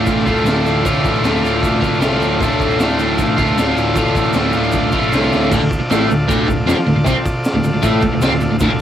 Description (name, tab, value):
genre	garage rock duo or trio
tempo	154 BPM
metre	4/4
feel	straight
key	D minor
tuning	A4 = 441 Hz
part	combo organ	sustained chords	0.0-8.8 s	F4 to D5	-24 LUFS	equal	none
part	crunchy overdriven guitar	riff	0.0-8.8 s	D2 to F4	-15 LUFS	equal	spring reverb
part	picked electric bass	bass	0.0-8.8 s	D1 to D2	-23 LUFS	equal	overdrive
part	raw garage drum kit	drums	0.1-8.7 s	crash cymbal, hi-hat, kick drum, snare drum	-20 LUFS	equal	none
part	egg shaker	percussion	0.1-8.7 s	none	-40 LUFS	right 8 dB	none
room	light reverb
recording	home recording on cassette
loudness	-13 LUFS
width	side -10 dB against mid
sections	0.0-5.5 A section; 5.5-8.8 B section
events	drum fill 5.1-5.5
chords	0.0 Dm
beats	0.07 0.46 | 0.85 1.24 1.63 2.02 | 2.41 2.80 3.19 3.58 | 3.96 4.35 4.74 5.13 | 5.51 5.90 6.29 6.67 | 7.06 7.45 7.83 8.22 | 8.60